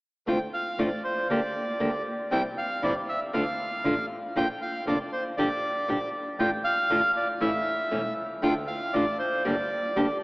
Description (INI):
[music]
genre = tango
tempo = 118 BPM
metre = 4/4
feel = rubato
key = D minor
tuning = A4 = 438 Hz
[part]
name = bandoneon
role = melody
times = 0.3-10.2 s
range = C5 to G5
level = -27 LUFS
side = equal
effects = slapback echo
[part]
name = nylon-string guitar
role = accompaniment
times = 0.3-10.1 s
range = C3 to G4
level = -29 LUFS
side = equal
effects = none
[part]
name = rich double bass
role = bass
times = 0.3-10.2 s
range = E1 to D2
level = -38 LUFS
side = equal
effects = none
[sound]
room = wet cathedral reverb, RT60 6.0 s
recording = in a vast, echoing space, AM radio sound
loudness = -25 LUFS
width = side -25 dB against mid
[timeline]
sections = 0.3-10.2 A section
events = none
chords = 0.3 Dm7; 1.3 Gm/D; 2.3 C; 3.3 Dm; 4.4 Bb; 5.4 Gm/Bb; 6.4 Dm/A; 7.4 A; 8.4 Dm; 9.5 Gm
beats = | 0.27 0.79 1.29 1.80 | 2.31 2.82 3.33 3.84 | 4.35 4.86 5.37 5.88 | 6.39 6.90 7.41 7.92 | 8.43 8.94 9.45 9.96